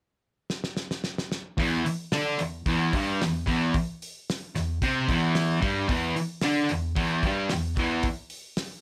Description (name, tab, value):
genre	garage rock duo or trio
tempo	111 BPM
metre	4/4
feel	straight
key	E minor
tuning	A4 = 440 Hz
part	cloth-damped thuddy drum kit	drums	0.5-8.7 s	hi-hat, kick drum, snare drum	-34 LUFS	equal	none
part	fuzz guitar	riff	1.6-8.0 s	E2 to D4	-27 LUFS	equal	distortion
room	light reverb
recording	none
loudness	-27 LUFS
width	mono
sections	0.0-1.6 A section; 1.6-8.8 B section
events	drum fill 0.5-1.6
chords	0.0 N.C.; 1.6 Em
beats	0.50 1.05 | 1.59 2.13 2.67 3.21 | 3.75 4.29 4.83 5.37 | 5.90 6.44 6.98 7.51 | 8.05 8.59